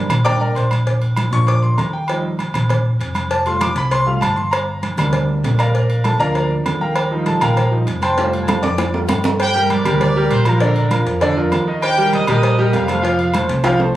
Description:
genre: latin, salsa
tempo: 197 BPM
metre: 4/4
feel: straight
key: G minor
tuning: A4 = 440 Hz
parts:
  - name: clear concert grand piano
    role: accompaniment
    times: 0.0-14.0 s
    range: D3 to D6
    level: -19 LUFS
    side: equal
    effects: none
  - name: hollow-body short-scale fingered electric bass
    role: bass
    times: 0.0-13.9 s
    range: F1 to Bb2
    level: -19 LUFS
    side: equal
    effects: none
  - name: agogo bells and timbales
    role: percussion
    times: 0.1-13.9 s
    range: none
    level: -24 LUFS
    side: right 2 dB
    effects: none
  - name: congas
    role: percussion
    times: 0.1-14.0 s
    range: none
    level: -26 LUFS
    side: right 1 dB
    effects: none
  - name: cowbell and bongos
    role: percussion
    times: 0.1-13.8 s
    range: none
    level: -26 LUFS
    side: left 1 dB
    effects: none
  - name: clear trumpet section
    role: melody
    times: 9.4-13.5 s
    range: G4 to Eb6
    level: -20 LUFS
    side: equal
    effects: none
room: light reverb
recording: recorded on a phone in the room, club reverb, compression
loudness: -14 LUFS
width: side -14 dB against mid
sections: 0.0-9.4 A section; 9.4-14.0 B section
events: grand piano solo 0.0-9.4; drum fill 8.2-9.4, 13.6-14.0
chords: 0.0 Gm; 0.9 Bb; 2.1 Ebadd9; 3.3 Fadd9; 4.5 Gm; 5.7 Bb; 7.0 Ebadd9; 8.2 Fadd9; 9.4 Gm; 10.6 Bb; 11.8 Ebadd9; 13.0 F

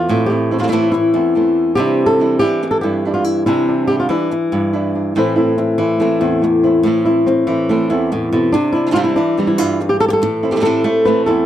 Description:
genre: flamenco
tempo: 142 BPM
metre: 4/4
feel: straight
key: A minor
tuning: A4 = 445 Hz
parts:
  - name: flamenco guitar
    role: melody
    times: 0.0-11.5 s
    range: E2 to B4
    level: -14 LUFS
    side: left 1 dB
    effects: none
  - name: flamenco guitar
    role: stabs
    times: 0.0-11.5 s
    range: A2 to E4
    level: -20 LUFS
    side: right 4 dB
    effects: none
room: studio reverb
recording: dry, close 1970s-style studio recording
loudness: -13 LUFS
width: side -11 dB against mid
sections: 0.0-11.5 A section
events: none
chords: 0.0 Am; 1.8 Cadd9; 5.2 Am; 8.5 Cadd9; 10.2 Am

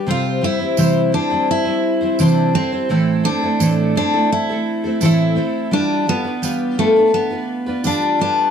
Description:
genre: acoustic folk duo or small band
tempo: 85 BPM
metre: 4/4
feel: straight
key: C major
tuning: A4 = 440 Hz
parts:
  - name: picked steel-string acoustic guitar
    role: melody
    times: 0.0-8.5 s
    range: A3 to G4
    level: -18 LUFS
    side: left 1 dB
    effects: none
  - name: picked twelve-string acoustic guitar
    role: accompaniment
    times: 0.0-8.5 s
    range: A2 to C5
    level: -18 LUFS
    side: right 1 dB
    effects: lush chorus
  - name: tambourine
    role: percussion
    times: 0.8-8.0 s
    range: none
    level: -29 LUFS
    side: right 11 dB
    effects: none
room: moderate studio reverb, RT60 0.5 s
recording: dark, warm production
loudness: -15 LUFS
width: side -7 dB against mid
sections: 0.0-8.5 A section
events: none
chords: 0.1 C; 2.9 Am; 5.7 G7

